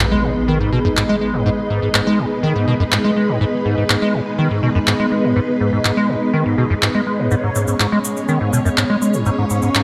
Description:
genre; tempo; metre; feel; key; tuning
acid house; 123 BPM; 4/4; straight; G# minor pentatonic; A4 = 440 Hz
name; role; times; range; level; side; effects
string machine, full ensemble; sustained chords; 0.0-9.8 s; G#3 to C#5; -25 LUFS; equal; phaser, ensemble chorus
acid bass, square; riff; 0.0-9.8 s; F#2 to G#3; -20 LUFS; equal; analog chorus, analog delay
electronic handclaps; drums; 0.0-9.8 s; none; -22 LUFS; equal; overdrive
impact; sound effects; 0.0-1.5 s; none; -28 LUFS; equal; none
granular cloud pad; texture; 0.0-9.8 s; B3 to B5; -24 LUFS; equal; built-in reverb
cabasa; percussion; 7.3-9.8 s; none; -31 LUFS; equal; none
room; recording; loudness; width
moderate lush hall reverb, RT60 2.4 s; dark, warm production; -17 LUFS; mono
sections
0.0-9.8 A section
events
impact 0.0-1.5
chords
0.0 G#m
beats
0.48 0.97 | 1.46 1.95 2.43 2.92 | 3.41 3.90 4.38 4.87 | 5.36 5.85 6.33 6.82 | 7.31 7.80 8.29 8.77 | 9.26 9.75

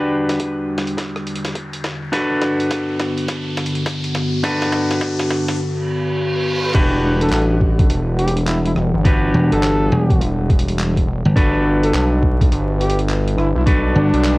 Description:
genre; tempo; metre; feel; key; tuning
glitch hop; 104 BPM; 4/4; swing 63% on 16ths; E minor; A4 = 444 Hz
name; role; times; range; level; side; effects
warbly tape-like pad; sustained chords; 0.0-14.4 s; E2 to F#5; -24 LUFS; equal; chorus, built-in reverb, sidechain pumping
clean electric guitar; stabs; 0.0-14.4 s; D4 to B4; -21 LUFS; equal; sidechain pumping, analog delay
riser and reverse cymbal; sound effects; 0.0-6.7 s; none; -28 LUFS; right 1 dB; none
boom bap sampler-style drum kit; drums; 0.3-14.4 s; crash cymbal, handclaps, hi-hat, rim click, snare drum; -27 LUFS; equal; high-pass filter on hats, cassette tape, high-pass filter on snare, high-pass filter on toms, high-pass filter on cymbals
electronic kick drum; drums; 0.4-13.8 s; none; -16 LUFS; equal; high-pass filter on kick, cassette tape
gritty driven synth bass; bass; 6.7-14.4 s; E1 to B1; -19 LUFS; equal; tube saturation
breathy trumpet; melody; 7.2-14.4 s; D4 to A4; -23 LUFS; equal; cassette tape, analog delay
slap bass; bass; 9.3-14.1 s; E1 to G1; -15 LUFS; equal; none
room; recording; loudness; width
light reverb; home recording on cassette, vinyl crackle; -15 LUFS; side -21 dB against mid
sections
0.0-6.7 A section; 6.7-14.4 B section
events
build-up 0.0-6.7; drum fill 0.0-5.6; riser 0.0-5.6; filter sweep on ambient pad 0.0-6.7; reverse cymbal 5.6-6.7; drop 6.7-14.4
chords
0.0 Em9; 2.1 Gmaj7; 6.7 Em9; 11.4 Gmaj7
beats
0.40 0.98 1.55 | 2.13 2.71 3.29 3.86 | 4.44 5.01 5.59 6.17 | 6.75 7.32 7.90 8.48 | 9.05 9.63 10.21 10.79 | 11.36 11.94 12.52 13.09 | 13.67 14.25

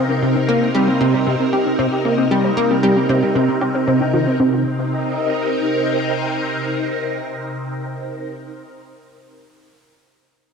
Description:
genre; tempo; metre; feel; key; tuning
ambient, sequencer-driven space music; 115 BPM; 4/4; straight; C minor; A4 = 443 Hz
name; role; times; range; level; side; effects
phased string machine; sustained chords; 0.0-8.4 s; C3 to Bb4; -20 LUFS; equal; ensemble chorus, phaser
plucky analog bass; riff; 0.0-4.6 s; C3 to G4; -18 LUFS; right 1 dB; wide subtle chorus, analog delay
warbly dusty pluck; arpeggios; 0.1-4.6 s; C4 to C5; -23 LUFS; moving between left 4 dB and right 2 dB; chorus, auto-pan, analog delay
room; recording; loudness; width
moderate plate reverb, RT60 2.6 s; dark, warm production; -16 LUFS; side -6 dB against mid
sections
0.0-4.4 A section; 4.4-8.6 B section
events
none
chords
0.0 Cm7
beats
| 0.22 0.74 1.27 1.79 | 2.31 2.83 3.35 3.88 | 4.40 4.92 5.44 5.96 | 6.48 7.01 7.53 8.05

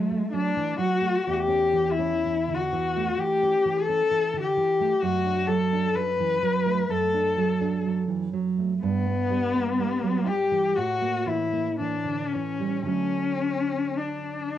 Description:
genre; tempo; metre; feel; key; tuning
romantic duo for cello and classical guitar; 53-66 BPM; 4/4; rubato; D major; A4 = 440 Hz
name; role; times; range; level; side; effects
warm cello; melody; 0.0-14.6 s; A3 to B4; -24 LUFS; left 4 dB; none
nylon-string guitar; accompaniment; 0.0-14.6 s; E2 to D4; -28 LUFS; right 6 dB; cassette tape
room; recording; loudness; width
light reverb, studio reverb; home recording on cassette; -23 LUFS; side -11 dB against mid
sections
0.0-14.6 A section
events
none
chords
0.0 D; 1.3 A/E; 5.0 D/F#; 8.8 Em/G; 10.8 A5; 12.9 D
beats
0.31 | 1.25 2.21 3.17 4.10 | 5.01 5.95 6.90 7.86 | 8.82 9.79 10.76 11.79 | 12.88 13.99

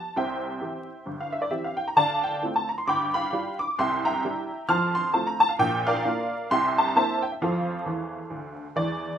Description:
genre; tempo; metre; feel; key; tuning
jazz, stride piano; 132 BPM; 4/4; swing 59% on 8ths; F major; A4 = 439 Hz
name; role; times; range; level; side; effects
honky-tonk upright piano; solo; 0.0-9.2 s; G1 to F6; -23 LUFS; equal; none
room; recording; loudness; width
moderate club reverb, RT60 0.8 s; minimal, uncompressed stereo recording, vinyl crackle, lossy compression artefacts; -23 LUFS; side -9 dB against mid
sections
0.0-9.2 A section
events
honky-tonk piano fill 7.9-9.2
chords
0.1 C; 2.0 Dm7; 2.9 G7; 3.8 C9; 4.7 F; 5.6 Bb; 6.5 C7; 7.4 F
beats
| 0.15 0.60 1.05 1.51 | 1.96 2.42 2.87 3.32 | 3.78 4.23 4.68 5.14 | 5.59 6.04 6.50 6.95 | 7.40 7.85 8.30 8.76

